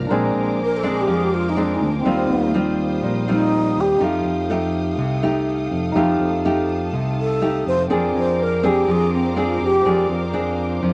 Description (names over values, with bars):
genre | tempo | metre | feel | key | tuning
bossa nova | 123 BPM | 4/4 | straight | unclear | A4 = 440 Hz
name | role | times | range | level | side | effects
barky tine electric piano | accompaniment | 0.0-10.9 s | C4 to Ab5 | -29 LUFS | equal | none
nylon-string guitar | accompaniment | 0.0-10.9 s | Bb2 to Ab4 | -24 LUFS | equal | none
bright studio string section | sustained chords | 0.0-10.9 s | A4 to Eb6 | -35 LUFS | equal | none
fingered electric bass | bass | 0.0-10.9 s | Bb1 to F2 | -27 LUFS | equal | none
breathy wooden-headed alto flute | melody | 0.6-4.0, 7.2-10.1 s | C4 to C5 | -22 LUFS | equal | none
room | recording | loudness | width
moderate studio reverb, RT60 0.8 s | vinyl crackle, nothing above 10.7 kHz | -20 LUFS | mono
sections
0.0-10.9 A section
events
alto flute solo 0.0-10.9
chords
0.1 Bb9; 2.1 Eb69; 4.0 F9; 7.9 Bb9/F